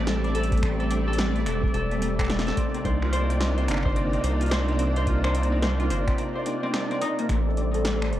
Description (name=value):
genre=IDM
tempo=108 BPM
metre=4/4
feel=swing 62% on 16ths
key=unclear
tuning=A4 = 437 Hz
part: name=soft string machine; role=sustained chords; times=0.0-8.2 s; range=C3 to Eb4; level=-30 LUFS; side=right 2 dB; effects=ensemble chorus
part: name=Celtic harp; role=arpeggios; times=0.0-8.2 s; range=A3 to C5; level=-29 LUFS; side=left 3 dB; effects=low-pass filter, ping-pong delay
part: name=round analog bass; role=bass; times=0.0-8.2 s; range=E1 to C2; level=-26 LUFS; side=equal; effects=none
part: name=bubbling stepped-filter texture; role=texture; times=0.0-8.2 s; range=D5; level=-36 LUFS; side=left 1 dB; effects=chorus, built-in reverb
part: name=electro analog drum machine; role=drums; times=0.1-8.2 s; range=finger snaps, hi-hat, snare drum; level=-32 LUFS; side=equal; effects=overdrive
part: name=electronic kick drum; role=drums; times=0.5-7.4 s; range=none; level=-27 LUFS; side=equal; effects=overdrive
room=light reverb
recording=worn, warbling old tape, cassette tape, warbly pitch drift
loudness=-22 LUFS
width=side -13 dB against mid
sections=0.0-7.3 A section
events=break 6.2-7.3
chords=0.0 Am7; 2.6 Cm9; 7.3 Am7